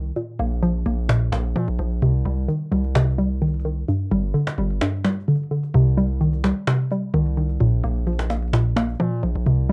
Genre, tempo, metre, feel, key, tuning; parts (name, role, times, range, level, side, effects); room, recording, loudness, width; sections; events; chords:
hip hop, trap; 129 BPM; 4/4; half-time; C minor; A4 = 440 Hz
hollow square pluck; accompaniment; 0.0-9.7 s; G2 to Bb3; -23 LUFS; equal; chorus, low-pass filter
distorted 808-style bass; bass; 0.0-9.7 s; G1 to Bb2; -26 LUFS; equal; distortion
cajon; drums; 0.2-9.7 s; -30 LUFS; equal
moderate small room reverb, RT60 0.5 s; dark, warm production; -22 LUFS; mono
0.0-5.7 A section; 5.7-9.7 B section
kick muted 4.8-5.7
0.2 Bb5; 2.0 Cm; 3.9 G5; 5.7 Cm; 7.6 Bb5